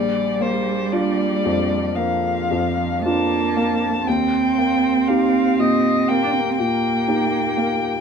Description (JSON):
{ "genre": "classical, slow romantic movement for piano trio", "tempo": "59 BPM", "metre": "4/4", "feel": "rubato", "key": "Bb major", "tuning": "A4 = 440 Hz", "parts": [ { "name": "muted violin", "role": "melody", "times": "0.0-8.0 s", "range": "C5 to A5", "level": "-23 LUFS", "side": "left 5 dB", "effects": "none" }, { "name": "muted cello", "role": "second line", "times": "0.0-8.0 s", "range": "F3 to D4", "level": "-22 LUFS", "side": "right 7 dB", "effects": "none" }, { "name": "warm baby grand piano", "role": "accompaniment", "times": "0.0-8.0 s", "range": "Bb1 to G4", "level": "-21 LUFS", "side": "left 2 dB", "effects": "none" } ], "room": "light reverb", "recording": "minimal, uncompressed stereo recording", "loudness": "-17 LUFS", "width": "side -6 dB against mid", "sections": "0.0-8.0 A section", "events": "none", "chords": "0.0 Bb; 4.1 Eb6" }